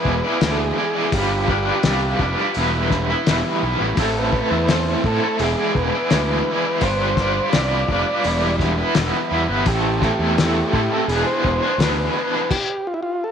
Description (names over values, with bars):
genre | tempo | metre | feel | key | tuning
psychedelic rock | 84 BPM | 4/4 | straight | unclear | A4 = 440 Hz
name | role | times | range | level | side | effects
overdriven combo organ | melody | 0.0-13.3 s | E4 to D5 | -24 LUFS | equal | tape echo
raw garage guitar | riff | 0.0-12.5 s | E3 to D5 | -20 LUFS | right 1 dB | overdrive, tremolo
fuzz fingered electric bass | bass | 0.1-12.1 s | E1 to A2 | -23 LUFS | right 1 dB | overdrive
cloth-damped thuddy drum kit | drums | 0.1-12.7 s | crash cymbal, hi-hat, kick drum, snare drum | -22 LUFS | left 3 dB | none
room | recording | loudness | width
light reverb, studio ambience | 1960s-style stereo | -17 LUFS | side -8 dB against mid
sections
0.0-13.3 A section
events
stop 12.5-13.3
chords
0.0 E7; 1.1 G7sus4; 2.6 Em; 4.0 Am; 5.4 E7; 6.8 G7sus4; 8.2 Em; 9.7 Am7; 11.1 E7; 12.5 N.C.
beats
0.42 | 1.14 1.85 2.56 3.27 | 3.98 4.70 5.41 6.12 | 6.83 7.54 8.25 8.96 | 9.67 10.38 11.09 11.80 | 12.51 13.22